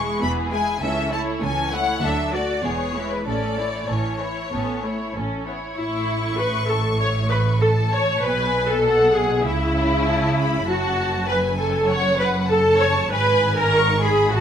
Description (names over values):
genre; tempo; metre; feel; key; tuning
quick classical-period movement for string orchestra; 98 BPM; 4/4; straight; A major; A4 = 440 Hz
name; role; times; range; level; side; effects
clear symphonic violin section; melody; 0.0-14.4 s; B4 to C#6; -27 LUFS; left 4 dB; none
warm symphonic violin section; second line; 0.0-14.4 s; C#4 to D5; -27 LUFS; left 1 dB; none
clear symphonic viola section; accompaniment; 0.0-14.4 s; E3 to C#5; -22 LUFS; equal; none
clear studio cello section; bass; 0.0-14.4 s; C#2 to C#3; -27 LUFS; right 1 dB; none
warm studio double bass section; bass; 0.0-14.4 s; E1 to D2; -27 LUFS; right 2 dB; none
room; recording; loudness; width
moderate recital hall reverb, RT60 1.2 s; close, detailed microphones; -18 LUFS; side -9 dB against mid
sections
0.0-5.8 A section; 5.8-14.4 B section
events
none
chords
0.0 E; 0.8 A/C#; 2.0 D; 2.6 E; 3.3 A; 8.2 G#m7/B; 9.5 C#m7; 10.7 F#m; 13.1 G#madd9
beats
0.22 | 0.81 1.42 2.02 2.64 | 3.26 3.89 4.53 5.15 | 5.78 6.39 7.01 7.62 | 8.23 8.84 9.46 10.06 | 10.68 11.29 11.90 12.50 | 13.11 13.72 14.32